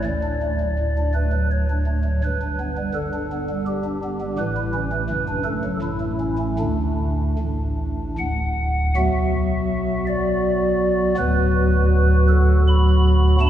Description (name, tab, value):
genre	classical, chorale-style piece for pipe organ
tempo	74-85 BPM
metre	3/4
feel	rubato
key	D major, B minor from 9.0 s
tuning	A4 = 440 Hz
part	pipe organ, stopped flute	solo	0.0-13.5 s	D1 to B5	-18 LUFS	equal	none
room	wet church reverb, RT60 3.3 s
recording	recorded in a church or concert hall, studio reverb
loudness	-18 LUFS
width	side -11 dB against mid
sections	0.0-9.0 A section; 9.0-13.5 B section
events	none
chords	0.1 D; 2.2 G; 4.4 A; 5.1 D/F#; 5.8 A; 6.6 D; 9.0 Bm; 11.2 Bm/D